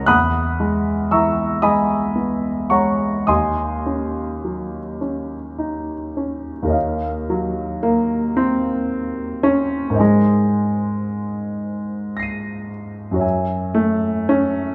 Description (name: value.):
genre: classical, impressionist solo piano.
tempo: 34-39 BPM (dotted quarters).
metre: 6/8.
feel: rubato.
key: Eb dorian.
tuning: A4 = 438 Hz.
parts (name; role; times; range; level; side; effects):
warm grand piano; solo; 0.0-14.7 s; Eb2 to Eb7; -20 LUFS; equal; none.
room: moderate recital hall reverb, RT60 1.6 s.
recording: none.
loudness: -20 LUFS.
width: mono.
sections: 0.0-6.7 A section; 6.7-14.7 B section.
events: none.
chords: 0.1 Emaj7; 3.3 Ebm7; 6.7 Ebsus2; 10.0 Abadd9; 13.2 Gbsus2.